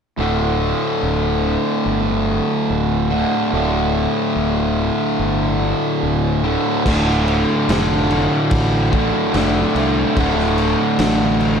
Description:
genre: stoner and doom metal.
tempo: 72 BPM.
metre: 4/4.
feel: straight.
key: D minor.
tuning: A4 = 441 Hz.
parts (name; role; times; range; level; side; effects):
fuzz guitar; riff; 0.2-11.6 s; D2 to D3; -17 LUFS; equal; distortion.
fuzz fingered electric bass; bass; 0.2-11.6 s; D1 to C2; -22 LUFS; equal; overdrive.
raw garage drum kit; drums; 6.9-11.6 s; crash cymbal, kick drum, snare drum; -22 LUFS; left 1 dB; none.
room: light reverb, small room ambience.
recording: none.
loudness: -15 LUFS.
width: side -6 dB against mid.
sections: 0.2-6.9 A section; 6.9-11.6 B section.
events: none.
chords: 0.2 D5; 6.9 Dm.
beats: | 0.19 1.03 1.86 2.70 | 3.53 4.37 5.20 6.03 | 6.86 7.69 8.51 9.34 | 10.16 10.99.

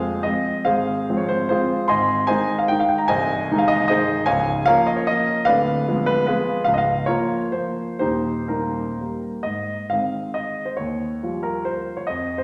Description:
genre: classical, romantic triple-time dance for piano with dotted rhythms.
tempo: 116-161 BPM.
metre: 3/4.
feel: rubato.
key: Ab major from 4.3 s.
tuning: A4 = 439 Hz.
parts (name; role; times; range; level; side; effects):
warm grand piano; solo; 0.0-12.4 s; C1 to C6; -22 LUFS; equal; none.
room: wet scoring stage reverb, RT60 1.6 s.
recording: none.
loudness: -21 LUFS.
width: mono.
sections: 0.0-9.5 A section; 9.5-12.4 B section.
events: none.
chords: 0.0 Fm; 0.7 Fm/Ab; 1.9 Ab; 3.1 Ab/C; 4.3 Bbm7/Db; 5.5 Ddim7; 6.7 Bbm/Db; 8.0 Eb; 9.5 Ab; 10.8 Eb9.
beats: 0.25 | 0.66 1.09 1.51 | 1.90 2.29 2.70 | 3.09 3.49 3.90 | 4.28 4.68 5.09 | 5.48 5.87 6.28 | 6.67 7.08 7.54 | 8.01 8.50 9.00 | 9.46 9.90 10.36 | 10.78 11.22 11.67 | 12.09.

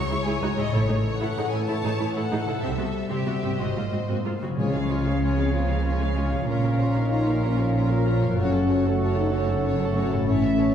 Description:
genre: cinematic.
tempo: 126 BPM (dotted quarters).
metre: 12/8.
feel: straight.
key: Db major from 4.6 s.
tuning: A4 = 439 Hz.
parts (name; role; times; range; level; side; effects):
rich studio violin section; melody; 0.0-10.7 s; C#5 to C#6; -36 LUFS; left 3 dB; none.
warm symphonic violin section; second line; 0.0-10.7 s; G4 to F5; -35 LUFS; left 1 dB; none.
mellow French horn section; sustained chords; 0.0-10.7 s; E3 to C5; -28 LUFS; left 4 dB; none.
concert harp; arpeggios; 0.0-10.7 s; Gb2 to Bb4; -32 LUFS; left 4 dB; none.
warm studio viola section; accompaniment; 0.1-10.7 s; A#3 to Bb4; -33 LUFS; right 1 dB; none.
rich symphonic cello section; bass; 0.1-10.7 s; C#2 to Db3; -28 LUFS; right 3 dB; none.
warm symphonic double bass section; bass; 0.7-10.7 s; Gb1 to Db2; -27 LUFS; right 2 dB; none.
bright clarinet; second line; 4.6-10.7 s; A4 to Db5; -36 LUFS; right 4 dB; none.
concert flute; second line; 4.6-10.7 s; E5 to Gb5; -36 LUFS; equal; none.
warm trombone section; sustained chords; 4.6-10.7 s; E3 to Bb3; -33 LUFS; right 2 dB; none.
dark trumpet section; stabs; 4.6-10.7 s; Db5; -34 LUFS; right 2 dB; none.
timpani; percussion; 4.6-5.0 s; Db3; -30 LUFS; equal; none.
room: wet scoring stage reverb, RT60 1.7 s.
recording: heard from further back in the room.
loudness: -22 LUFS.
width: side -9 dB against mid.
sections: 0.0-4.6 A section; 4.6-10.7 B section.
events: none.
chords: 0.0 C#m; 0.7 A; 2.6 C; 3.6 G#7; 4.6 Db; 6.5 Bbm; 8.4 Gbm.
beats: 0.27 | 0.74 1.21 1.69 2.16 | 2.64 3.12 3.60 4.10 | 4.59 5.06 5.54 6.02 | 6.49 6.97 7.44 7.92 | 8.39 8.86 9.34 9.81 | 10.28.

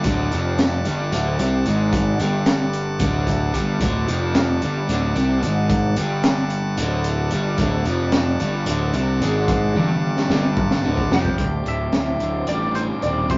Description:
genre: psychedelic rock.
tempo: 222 BPM (eighths).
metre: 7/8.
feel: straight.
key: D mixolydian.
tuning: A4 = 442 Hz.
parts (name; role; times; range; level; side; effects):
bright tonewheel organ; sustained chords; 0.0-13.4 s; C4 to A5; -32 LUFS; equal; overdrive, stopped rotary speaker.
crunchy overdriven guitar; riff; 0.0-13.4 s; D2 to C4; -26 LUFS; equal; none.
fuzz picked electric bass; bass; 0.0-13.4 s; D1 to C2; -25 LUFS; equal; overdrive.
crunchy breakbeat drum kit; drums; 0.0-13.4 s; hi-hat, kick drum, snare drum, toms; -25 LUFS; equal; none.
lightly driven lead guitar; melody; 11.1-13.4 s; G4 to E5; -28 LUFS; equal; wah.
room: light reverb.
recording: rough rehearsal-room recording, nothing above 7.5 kHz.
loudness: -21 LUFS.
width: mono.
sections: 0.0-11.4 A section; 11.4-13.4 B section.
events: drum fill 9.8-11.4.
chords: 0.0 D; 11.4 D7sus4.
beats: | 0.05 0.32 0.59 0.86 1.12 1.39 1.66 | 1.93 2.20 2.47 2.74 3.01 3.28 3.55 | 3.82 4.09 4.36 4.62 4.89 5.16 5.43 | 5.70 5.97 6.24 6.51 6.78 7.05 7.32 | 7.59 7.86 8.13 8.40 8.67 8.94 9.21 | 9.49 9.76 10.03 10.30 10.57 10.85 11.12 | 11.39 11.66 11.94 12.21 12.48 12.76 13.03 | 13.31.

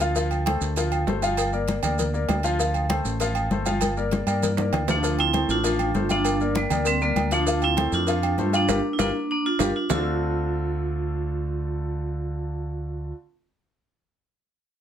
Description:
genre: latin, salsa.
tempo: 197 BPM.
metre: 4/4.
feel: straight.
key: D minor.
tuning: A4 = 442 Hz.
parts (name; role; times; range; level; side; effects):
clear grand piano; accompaniment; 0.0-13.1 s; D3 to F5; -28 LUFS; left 4 dB; none.
fingered electric bass; bass; 0.0-13.1 s; G1 to G2; -27 LUFS; right 1 dB; none.
agogo bells and timbales; percussion; 0.0-10.0 s; none; -30 LUFS; right 5 dB; none.
congas; percussion; 0.0-10.0 s; none; -30 LUFS; left 2 dB; none.
cowbell and bongos; percussion; 0.0-10.0 s; none; -33 LUFS; left 5 dB; none.
maracas; percussion; 0.0-10.0 s; none; -35 LUFS; right 8 dB; none.
vibraphone with hard mallets; melody; 4.9-13.1 s; G3 to F4; -26 LUFS; right 2 dB; none.
room: moderate studio ambience, RT60 0.5 s.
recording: none.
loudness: -22 LUFS.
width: side -9 dB against mid.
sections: 0.0-5.0 A section; 5.0-9.9 B section; 9.9-12.3 C section.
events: drum fill 3.8-5.0, 8.7-9.9; band accent 8.7-9.9.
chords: 0.2 Dm7; 1.4 Gm7; 2.6 Dm7; 3.8 Gm7; 5.0 Dm7; 6.2 Gm7; 7.5 Dm7; 8.7 Gm7; 9.9 Dm7.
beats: | 0.16 0.47 0.77 1.07 | 1.38 1.68 1.99 2.29 | 2.60 2.90 3.21 3.51 | 3.81 4.12 4.42 4.73 | 5.03 5.34 5.64 5.95 | 6.25 6.55 6.86 7.16 | 7.47 7.77 8.07 8.38 | 8.68 8.99 9.29 9.60 | 9.90 10.20 10.51 10.81 | 11.12 11.42 11.72 12.03.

